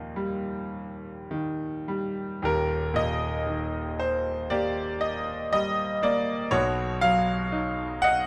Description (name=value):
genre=classical, lyrical solo piano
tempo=50-62 BPM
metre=4/4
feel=rubato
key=unclear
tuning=A4 = 440 Hz
part: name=bright concert grand piano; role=solo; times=0.0-8.3 s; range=Eb1 to F#5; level=-28 LUFS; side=equal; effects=none
room=light reverb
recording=dark, warm production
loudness=-28 LUFS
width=mono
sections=0.0-2.4 A section; 2.4-8.3 A section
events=none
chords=0.0 Eb; 6.5 B